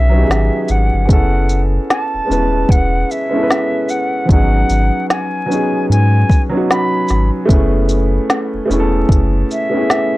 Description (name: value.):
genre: lo-fi hip hop.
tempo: 75 BPM.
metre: 4/4.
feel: swing 60% on 16ths.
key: F# dorian.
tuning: A4 = 440 Hz.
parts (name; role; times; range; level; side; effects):
silver concert flute; melody; 0.0-10.2 s; E5 to B5; -20 LUFS; equal; low-pass filter.
warm upright piano; accompaniment; 0.0-10.2 s; D#3 to B4; -17 LUFS; equal; low-pass filter.
warm sub bass; bass; 0.0-9.4 s; D#1 to G#2; -15 LUFS; equal; none.
organic electronic drum kit; drums; 0.3-10.1 s; hi-hat, kick drum, shaker, snare drum; -14 LUFS; equal; none.
room: little or no reverb.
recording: dry, gritty hardware recording, vinyl crackle.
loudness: -12 LUFS.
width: side -18 dB against mid.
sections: 0.0-10.2 A section.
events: none.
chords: 0.0 C#7sus4/G#; 1.1 F#m11; 4.3 C#7sus4/G#; 7.5 F#m11.